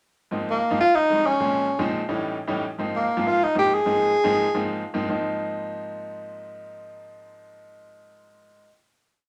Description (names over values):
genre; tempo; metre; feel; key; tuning
jazz; 195 BPM; 4/4; straight; Ab major; A4 = 440 Hz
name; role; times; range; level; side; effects
clear concert grand piano; accompaniment; 0.3-8.7 s; F2 to F4; -30 LUFS; equal; none
warm tenor saxophone; melody; 0.5-4.8 s; Bb3 to Ab4; -22 LUFS; equal; none
room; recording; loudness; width
moderate large studio reverb, RT60 0.9 s; none; -23 LUFS; mono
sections
0.2-5.1 A section; 5.1-7.5 final chord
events
none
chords
0.2 Ab69; 0.8 Fm9; 1.4 Bbm9; 2.0 A7#11; 2.6 Ab69